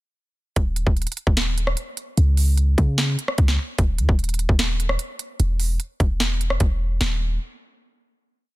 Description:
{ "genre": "hip hop, trap", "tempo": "149 BPM", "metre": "4/4", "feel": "half-time", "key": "unclear", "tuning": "A4 = 439 Hz", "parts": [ { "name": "warm 808-style bass", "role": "bass", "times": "0.6-7.4 s", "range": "Eb1 to Db3", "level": "-20 LUFS", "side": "equal", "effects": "none" }, { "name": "trap drum kit", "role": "drums", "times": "0.6-7.1 s", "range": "hi-hat, kick drum, rim click, snare drum", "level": "-22 LUFS", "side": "equal", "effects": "none" } ], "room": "little or no reverb", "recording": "dense, heavily limited modern master", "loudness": "-19 LUFS", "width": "side -19 dB against mid", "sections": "0.6-7.0 hook; 7.0-8.6 final note", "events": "none", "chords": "none", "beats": "| 0.56 0.97 1.37 1.77 | 2.17 2.58 2.98 3.38 | 3.79 4.19 4.59 4.99 | 5.40 5.80 6.20 6.60 | 7.01" }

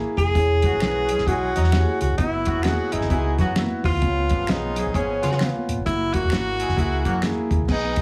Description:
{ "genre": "uptempo 1960s-style soul", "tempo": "131 BPM", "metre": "4/4", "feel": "swing 61% on 8ths", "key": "unclear", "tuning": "A4 = 440 Hz", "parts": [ { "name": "warm grand piano", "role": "accompaniment", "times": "0.0-8.0 s", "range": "A3 to B4", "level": "-31 LUFS", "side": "equal", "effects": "none" }, { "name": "breathy tenor saxophone", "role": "melody", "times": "0.2-8.0 s", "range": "C#4 to G#4", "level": "-26 LUFS", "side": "equal", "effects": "none" }, { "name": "vintage muted fingered electric bass", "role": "bass", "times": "0.2-8.0 s", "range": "E1 to C#3", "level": "-26 LUFS", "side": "equal", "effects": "none" }, { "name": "cloth-damped thuddy drum kit", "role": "drums", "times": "0.2-8.0 s", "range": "crash cymbal, hi-hat, kick drum, snare drum", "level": "-28 LUFS", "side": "equal", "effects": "none" }, { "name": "congas", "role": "percussion", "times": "0.3-8.0 s", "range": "none", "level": "-38 LUFS", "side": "equal", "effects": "none" }, { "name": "warm horn section", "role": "second line", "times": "0.6-7.2 s", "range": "C#3 to G#4", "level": "-32 LUFS", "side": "equal", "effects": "none" }, { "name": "finger snap", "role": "percussion", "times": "0.8-7.4 s", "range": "none", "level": "-38 LUFS", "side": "equal", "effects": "none" }, { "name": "mellow tonewheel organ", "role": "sustained chords", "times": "7.7-8.0 s", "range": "B4 to D#6", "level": "-36 LUFS", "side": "equal", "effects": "chorus vibrato, stopped rotary speaker" } ], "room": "small room ambience", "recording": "heavily compressed radio sound", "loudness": "-22 LUFS", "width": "mono", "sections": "0.0-7.7 A section", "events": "none", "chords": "0.4 E6; 2.2 F#7sus4; 4.0 C#7; 5.9 F#7", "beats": "| 0.36 0.82 1.27 1.73 | 2.19 2.65 3.11 3.57 | 4.03 4.49 4.95 5.40 | 5.86 6.32 6.78 7.23 | 7.69" }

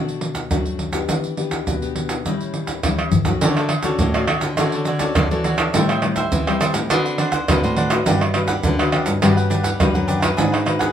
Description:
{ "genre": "samba and choro", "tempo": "103 BPM", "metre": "4/4", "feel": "straight", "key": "D major", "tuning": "A4 = 440 Hz", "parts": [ { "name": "nylon-string guitar", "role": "accompaniment", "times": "0.0-10.9 s", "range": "F#2 to B4", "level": "-24 LUFS", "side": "left 5 dB", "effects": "none" }, { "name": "egg shaker, pandeiro, surdo and tamborim", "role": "percussion", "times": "0.1-10.9 s", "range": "none", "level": "-20 LUFS", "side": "right 2 dB", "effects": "none" }, { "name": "cavaquinho", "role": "accompaniment", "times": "3.4-10.9 s", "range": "D4 to G5", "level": "-24 LUFS", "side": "right 2 dB", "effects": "none" }, { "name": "nylon-string guitar", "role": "bass", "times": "3.4-10.9 s", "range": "F#2 to G3", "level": "-22 LUFS", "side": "equal", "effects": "none" } ], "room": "wet studio reverb, RT60 0.6 s", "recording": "minimal, uncompressed stereo recording", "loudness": "-17 LUFS", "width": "side -9 dB against mid", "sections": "0.0-3.4 A section; 3.4-10.9 B section", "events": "drum fill 2.8-3.4", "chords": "0.0 Bm7; 1.1 Em7; 2.3 A7; 3.4 Dmaj7; 5.7 Am7; 6.9 D6; 8.1 Gmaj7#11; 10.4 G#m7b5", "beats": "0.52 | 1.10 1.68 2.26 2.84 | 3.42 4.00 4.58 5.16 | 5.74 6.32 6.90 7.48 | 8.06 8.64 9.22 9.80 | 10.38" }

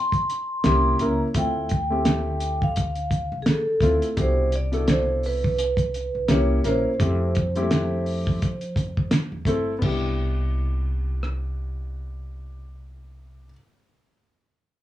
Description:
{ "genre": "hip hop, jazz-hop", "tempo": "85 BPM", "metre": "4/4", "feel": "swing 57% on 16ths", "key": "C major", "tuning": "A4 = 441 Hz", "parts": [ { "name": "vibraphone with soft mallets", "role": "melody", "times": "0.0-9.1 s", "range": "Ab4 to C6", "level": "-26 LUFS", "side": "right 1 dB", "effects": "none" }, { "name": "cloth-damped thuddy drum kit", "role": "drums", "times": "0.1-11.4 s", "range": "crash cymbal, hi-hat, kick drum, rim click, snare drum", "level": "-25 LUFS", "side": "right 1 dB", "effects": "none" }, { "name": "dark grand piano", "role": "accompaniment", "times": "0.6-13.5 s", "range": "B2 to Bb4", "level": "-27 LUFS", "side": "left 2 dB", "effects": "none" }, { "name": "upright bass", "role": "bass", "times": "0.6-13.5 s", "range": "G1 to F3", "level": "-26 LUFS", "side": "equal", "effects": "none" } ], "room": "light reverb", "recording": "small room ambience", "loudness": "-21 LUFS", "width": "side -13 dB against mid", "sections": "0.0-9.8 A section; 9.8-12.6 B section", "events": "none", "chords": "0.0 N.C.; 0.6 C7b9; 1.4 Dm7; 4.2 Cmaj7; 6.3 C7b9; 7.0 Fmaj7; 9.8 Cmaj7", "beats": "0.65 | 1.35 2.06 2.76 3.47 | 4.17 4.88 5.59 6.29 | 7.00 7.70 8.41 9.12 | 9.82 10.53 11.23 11.94" }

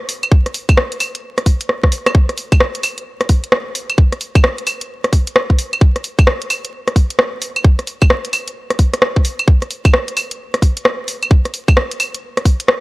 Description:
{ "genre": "UK garage", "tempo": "131 BPM", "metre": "4/4", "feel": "swing 63% on 16ths", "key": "none", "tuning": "none", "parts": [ { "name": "garage drum kit", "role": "drums", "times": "0.1-12.8 s", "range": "claves, hi-hat, rim click", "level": "-16 LUFS", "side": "equal", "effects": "overdrive" }, { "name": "electronic kick drum", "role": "drums", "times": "0.3-12.6 s", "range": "none", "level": "-10 LUFS", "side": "equal", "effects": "overdrive" } ], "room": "little or no reverb", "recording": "dry, gritty hardware recording, transformer saturation, vinyl crackle", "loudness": "-13 LUFS", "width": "side -22 dB against mid", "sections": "0.0-12.8 A section", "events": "drum fill 1.7-2.1", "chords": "none", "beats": "| 0.32 0.77 1.23 1.69 | 2.15 2.61 3.06 3.52 | 3.98 4.44 4.90 5.35 | 5.81 6.27 6.73 7.19 | 7.64 8.10 8.56 9.02 | 9.48 9.93 10.39 10.85 | 11.31 11.77 12.22 12.68" }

